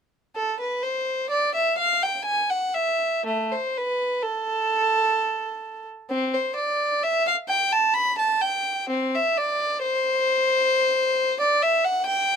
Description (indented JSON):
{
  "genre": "classical, baroque-style suite movement for unaccompanied violin",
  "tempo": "58-68 BPM",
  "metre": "3/4",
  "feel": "rubato",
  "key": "A minor",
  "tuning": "A4 = 440 Hz",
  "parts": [
    { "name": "warm violin", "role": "solo", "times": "0.4-12.4 s", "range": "A3 to B5", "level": "-21 LUFS", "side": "equal", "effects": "none" }
  ],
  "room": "light reverb",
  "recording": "close, detailed microphones",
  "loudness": "-21 LUFS",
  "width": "side -7 dB against mid",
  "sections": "0.4-12.4 A section",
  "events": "none",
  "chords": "none"
}